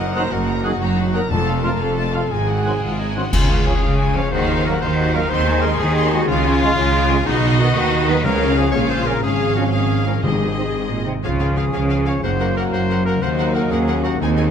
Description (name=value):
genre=cinematic, heroic adventure film score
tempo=121 BPM (dotted quarters)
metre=12/8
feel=straight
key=Db major from 3.3 s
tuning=A4 = 439 Hz
part: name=clear symphonic violin section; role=melody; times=0.0-14.4 s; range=Eb5 to C6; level=-27 LUFS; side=left 3 dB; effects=none
part: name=bright clarinet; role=second line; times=0.0-14.5 s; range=C4 to Db5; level=-26 LUFS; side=left 2 dB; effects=none
part: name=rich studio violin section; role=second line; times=0.0-14.5 s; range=Bb3 to Eb5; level=-28 LUFS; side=left 4 dB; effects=none
part: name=rich studio viola section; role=accompaniment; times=0.0-14.4 s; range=Gb3 to C5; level=-29 LUFS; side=equal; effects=none
part: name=concert harp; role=arpeggios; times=0.0-14.5 s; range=F2 to Eb6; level=-26 LUFS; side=left 10 dB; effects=none
part: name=mellow trumpet section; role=stabs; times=0.0-14.5 s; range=Eb4 to Eb5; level=-27 LUFS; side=right 1 dB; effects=none
part: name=clear symphonic cello section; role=bass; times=0.0-14.5 s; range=Eb2 to Eb3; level=-23 LUFS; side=right 1 dB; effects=none
part: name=clear symphonic double bass section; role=bass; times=0.0-14.5 s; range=F1 to Eb2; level=-22 LUFS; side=right 3 dB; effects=none
part: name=small flute group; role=second line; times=0.1-3.2 s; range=C6 to Eb6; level=-33 LUFS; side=left 5 dB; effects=none
part: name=mellow French horn section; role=sustained chords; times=0.1-3.2 s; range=Bb3 to Bb4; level=-33 LUFS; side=left 7 dB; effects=none
part: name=warm cor anglais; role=second line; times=0.2-3.2 s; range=F5 to Gb5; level=-34 LUFS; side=right 2 dB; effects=none
part: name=warm trombone section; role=sustained chords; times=0.2-14.5 s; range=C3 to Db4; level=-27 LUFS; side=right 3 dB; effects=none
part: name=timpani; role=percussion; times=1.3-1.8, 8.2-10.7 s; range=F2 to Db3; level=-26 LUFS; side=left 2 dB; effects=none
part: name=clash cymbals and concert bass drum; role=percussion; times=3.3-4.0 s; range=none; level=-23 LUFS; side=equal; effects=none
room=moderate scoring stage reverb, RT60 1.6 s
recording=none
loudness=-16 LUFS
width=side -8 dB against mid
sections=0.0-3.3 A section; 3.3-14.5 B section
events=band accent 3.3-3.7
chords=0.0 Ebm/Gb; 1.3 F; 2.3 Ab7; 3.3 Db; 4.3 Ebmadd9; 5.3 Ab/Eb; 6.3 Db; 7.3 Cb; 8.3 Db; 9.2 Db/Ab; 10.2 Ab; 11.2 Db; 12.2 Gb; 13.2 Ebm